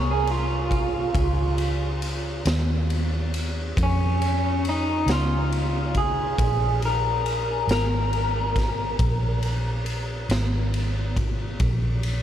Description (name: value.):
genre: slow blues.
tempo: 46 BPM (dotted quarters).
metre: 12/8.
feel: straight.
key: Bb minor.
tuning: A4 = 440 Hz.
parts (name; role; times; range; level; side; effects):
electric guitar through a small old amp; melody; 0.0-9.4 s; Db4 to Bb4; -27 LUFS; equal; wide subtle chorus.
vintage muted fingered electric bass; bass; 0.0-12.2 s; Ab1 to F2; -25 LUFS; equal; none.
raw garage drum kit; drums; 0.3-12.2 s; kick drum, ride cymbal, snare drum; -28 LUFS; equal; none.
room: moderate huge ambient reverb, RT60 8.3 s.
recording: dreamy mix soaked in reverb.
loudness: -22 LUFS.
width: side -10 dB against mid.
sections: 0.0-12.2 A section.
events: clean electric guitar solo 0.0-12.2.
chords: 0.0 Bbm.